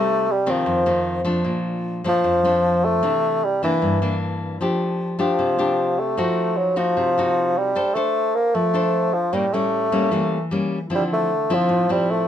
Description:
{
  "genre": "bossa nova",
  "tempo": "152 BPM",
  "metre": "4/4",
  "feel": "straight",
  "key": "F major",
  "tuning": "A4 = 440 Hz",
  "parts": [
    { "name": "warm bassoon", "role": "melody", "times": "0.0-12.3 s", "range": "E3 to Bb3", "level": "-20 LUFS", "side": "equal", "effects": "none" },
    { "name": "nylon-string guitar", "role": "accompaniment", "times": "0.0-12.3 s", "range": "F2 to C5", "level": "-22 LUFS", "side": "left 1 dB", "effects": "none" }
  ],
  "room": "moderate studio reverb, RT60 0.6 s",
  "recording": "minimal, uncompressed stereo recording",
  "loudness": "-18 LUFS",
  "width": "side -10 dB against mid",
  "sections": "0.0-12.3 A section",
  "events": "none",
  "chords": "0.0 Cm; 0.7 F7; 1.4 Bbmaj7; 3.0 C9; 4.6 F69; 6.2 F7b9; 7.8 F6; 9.3 A7b9; 10.9 Dm9"
}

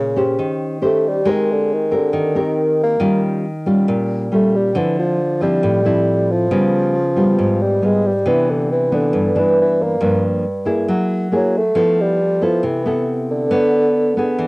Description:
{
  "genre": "bossa nova",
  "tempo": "137 BPM",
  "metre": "4/4",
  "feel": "straight",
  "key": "unclear",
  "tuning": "A4 = 441 Hz",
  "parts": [
    { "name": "dark bassoon", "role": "melody", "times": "0.0-14.5 s", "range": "Db3 to Bb3", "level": "-17 LUFS", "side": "equal", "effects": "cassette tape" },
    { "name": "nylon-string guitar", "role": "accompaniment", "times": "0.0-14.5 s", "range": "G2 to C#5", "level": "-17 LUFS", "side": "equal", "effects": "none" }
  ],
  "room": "moderate booth ambience, RT60 0.2 s",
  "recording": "home recording on cassette",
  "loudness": "-14 LUFS",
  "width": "side -26 dB against mid",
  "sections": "0.0-14.5 A section",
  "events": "none",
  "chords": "0.4 Eb6; 1.3 Abmaj9; 3.0 Eb9; 4.8 Dm9; 6.5 Db7#11; 8.3 Cmaj9; 10.0 Gm7; 10.9 F#9; 11.8 Fmaj9#11; 13.5 Bm9"
}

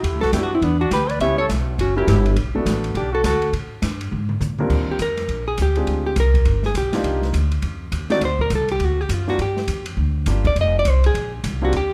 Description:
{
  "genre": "jazz, small-group swing and bop",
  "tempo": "205 BPM",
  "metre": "4/4",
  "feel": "swing 62% on 8ths",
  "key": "Eb major from 4.7 s",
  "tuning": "A4 = 440 Hz",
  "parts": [
    { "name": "hollow-body jazz guitar", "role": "melody", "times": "0.0-11.9 s", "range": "D4 to E5", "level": "-24 LUFS", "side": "equal", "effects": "none" },
    { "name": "mellow trumpet", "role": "second line", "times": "0.0-3.5 s", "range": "B3 to C#5", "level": "-30 LUFS", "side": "equal", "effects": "none" },
    { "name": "upright bass", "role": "bass", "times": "0.0-11.9 s", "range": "F1 to Bb2", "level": "-23 LUFS", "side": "equal", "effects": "none" },
    { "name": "open jazz drum kit", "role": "drums", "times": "0.0-11.8 s", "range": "crash cymbal, hi-hat, kick drum, ride cymbal, snare drum, toms", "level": "-30 LUFS", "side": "equal", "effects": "none" },
    { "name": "warm concert grand piano", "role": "accompaniment", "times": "0.3-11.7 s", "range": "Eb2 to A#4", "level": "-28 LUFS", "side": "equal", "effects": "none" }
  ],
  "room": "light reverb",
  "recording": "none",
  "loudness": "-20 LUFS",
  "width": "mono",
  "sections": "0.0-4.7 A section; 4.7-11.9 B section",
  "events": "drum fill 4.1-4.7; hollow-body jazz guitar solo 4.7-11.9",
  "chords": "0.0 Em9; 1.2 C#m7b5; 1.8 F#7b9; 2.4 Bm7; 3.5 Gsus2; 4.1 Abadd9; 4.7 Ebmaj13; 5.9 Dm7b5; 6.5 G7alt; 7.0 Cm11; 8.2 D7; 9.4 Gm7; 10.6 F5; 11.1 Bbadd9"
}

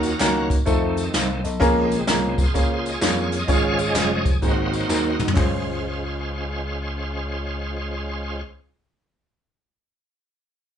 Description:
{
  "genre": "uptempo gospel",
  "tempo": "128 BPM",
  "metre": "4/4",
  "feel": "swing 65% on 8ths",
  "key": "Db major",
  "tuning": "A4 = 442 Hz",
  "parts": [
    { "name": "warm upright piano", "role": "accompaniment", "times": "0.0-8.4 s", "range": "Db2 to F5", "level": "-24 LUFS", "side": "equal", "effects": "none" },
    { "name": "bright tonewheel organ", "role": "sustained chords", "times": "0.0-8.4 s", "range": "Db3 to F5", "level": "-27 LUFS", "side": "right 1 dB", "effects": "slow rotary speaker, chorus vibrato" },
    { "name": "vintage slap bass", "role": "bass", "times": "0.0-8.4 s", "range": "F1 to F2", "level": "-29 LUFS", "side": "left 1 dB", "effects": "none" },
    { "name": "jazz brush drum kit", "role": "drums", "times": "0.0-5.5 s", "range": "hi-hat, kick drum, snare drum, toms", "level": "-23 LUFS", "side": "equal", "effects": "none" },
    { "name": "tambourine and handclaps", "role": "percussion", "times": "0.0-5.6 s", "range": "none", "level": "-31 LUFS", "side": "left 1 dB", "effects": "none" }
  ],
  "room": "wet studio ambience, RT60 0.5 s",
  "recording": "band playing live in one room, nothing above 10.5 kHz",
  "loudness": "-20 LUFS",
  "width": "side -8 dB against mid",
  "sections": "0.0-5.4 A section; 5.4-9.1 B section",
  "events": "tonewheel organ solo 0.0-5.4; drum fill 4.9-5.4",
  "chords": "0.0 Ebm7; 0.7 F7; 1.6 Bbm7; 3.5 Db/Ab; 4.4 Ab7; 5.4 Dbmaj7"
}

